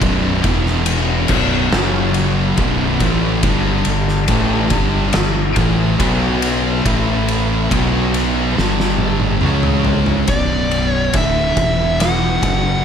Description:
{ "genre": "stoner and doom metal", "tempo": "70 BPM", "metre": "4/4", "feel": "straight", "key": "B minor", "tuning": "A4 = 441 Hz", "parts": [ { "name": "mellow hollow small flute group", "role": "sustained chords", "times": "0.0-12.8 s", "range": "C#4 to B5", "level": "-28 LUFS", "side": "equal", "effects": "none" }, { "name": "thick fuzz guitar", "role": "riff", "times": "0.0-12.8 s", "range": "B1 to C#4", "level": "-21 LUFS", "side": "left 10 dB", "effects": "distortion" }, { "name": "thick fuzz guitar", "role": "riff", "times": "0.0-12.8 s", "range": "B1 to C#4", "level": "-22 LUFS", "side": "right 9 dB", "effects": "distortion" }, { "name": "thick fuzz guitar", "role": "riff", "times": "0.0-10.3 s", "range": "B1 to C#4", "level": "-23 LUFS", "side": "equal", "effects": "distortion" }, { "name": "growling fingered electric bass", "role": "bass", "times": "0.0-12.8 s", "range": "B0 to C#2", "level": "-21 LUFS", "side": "equal", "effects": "overdrive" }, { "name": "oversized low-tuned drum kit", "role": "drums", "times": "0.0-12.6 s", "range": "crash cymbal, kick drum, ride cymbal, snare drum, toms", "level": "-20 LUFS", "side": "equal", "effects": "none" }, { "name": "fuzz lead guitar", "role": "melody", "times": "10.3-12.8 s", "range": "D5 to F#5", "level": "-19 LUFS", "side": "equal", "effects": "distortion, slapback echo" } ], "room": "little or no reverb", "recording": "none", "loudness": "-14 LUFS", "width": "side -8 dB against mid", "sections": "0.0-10.3 A section; 10.3-12.8 B section", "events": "drum fill 8.6-10.3", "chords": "0.0 Bm; 0.4 E5; 1.3 Bm; 1.7 F#5; 2.6 Bm; 3.4 G5; 6.0 B5; 6.9 A5; 7.7 B5; 8.6 G5; 9.4 C#5; 10.3 Bm; 11.6 E5; 12.4 Bm", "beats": "| 0.02 0.87 1.73 2.58 | 3.44 4.29 5.14 6.00 | 6.85 7.71 8.56 9.42 | 10.28 11.13 11.99" }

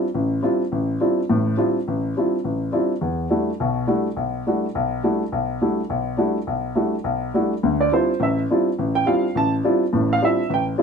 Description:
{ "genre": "jazz", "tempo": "209 BPM", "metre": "4/4", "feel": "swing 59% on 8ths", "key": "D dorian", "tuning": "A4 = 440 Hz", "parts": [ { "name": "warm upright piano", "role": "solo", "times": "0.0-10.8 s", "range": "A1 to A5", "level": "-19 LUFS", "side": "equal", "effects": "none" } ], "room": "moderate studio reverb, RT60 0.6 s", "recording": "minimal, uncompressed stereo recording", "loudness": "-19 LUFS", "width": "side -6 dB against mid", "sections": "0.0-7.6 A section; 7.6-10.8 B section", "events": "none", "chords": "0.0 Dm11; 3.0 Em11; 7.6 Dm11", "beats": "0.15 0.44 | 0.72 1.01 1.30 1.59 | 1.88 2.16 2.45 2.74 | 3.03 3.31 3.60 3.89 | 4.18 4.46 4.75 5.04 | 5.33 5.62 5.90 6.19 | 6.48 6.77 7.05 7.34 | 7.63 7.92 8.20 8.49 | 8.78 9.06 9.35 9.64 | 9.93 10.21 10.50 10.79" }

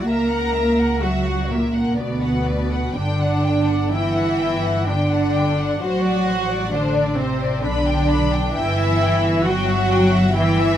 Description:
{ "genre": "classical, slow romantic movement for string orchestra", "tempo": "64 BPM", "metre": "3/4", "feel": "uneven beats, rubato", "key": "unclear", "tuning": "A4 = 441 Hz", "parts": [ { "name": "rich studio violin section", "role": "melody", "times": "0.0-10.8 s", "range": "C5 to B5", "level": "-28 LUFS", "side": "left 4 dB", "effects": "none" }, { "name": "warm studio violin section", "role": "second line", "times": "0.0-10.8 s", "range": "A#4 to A#5", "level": "-28 LUFS", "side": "left 2 dB", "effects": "none" }, { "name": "rich studio viola section", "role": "accompaniment", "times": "0.0-10.8 s", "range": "A#3 to A#4", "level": "-22 LUFS", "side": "right 1 dB", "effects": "none" }, { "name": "dark studio double bass section", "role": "bass", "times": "0.0-10.8 s", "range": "G1 to D2", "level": "-23 LUFS", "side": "equal", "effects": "none" }, { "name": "warm studio cello section", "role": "bass", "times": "0.0-10.8 s", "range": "A#2 to A#3", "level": "-22 LUFS", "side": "right 1 dB", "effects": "none" } ], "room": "light reverb", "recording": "close, detailed microphones", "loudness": "-17 LUFS", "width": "side -10 dB against mid", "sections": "0.0-10.8 A section", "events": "none", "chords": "0.1 F#7/C#; 2.0 Bm/D; 3.0 G5; 5.8 D7/A; 7.6 G/B; 8.5 Em/G", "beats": "| 0.09 1.03 1.99 | 2.97 3.93 4.88 | 5.82 6.74 7.63 | 8.55 9.45 10.36" }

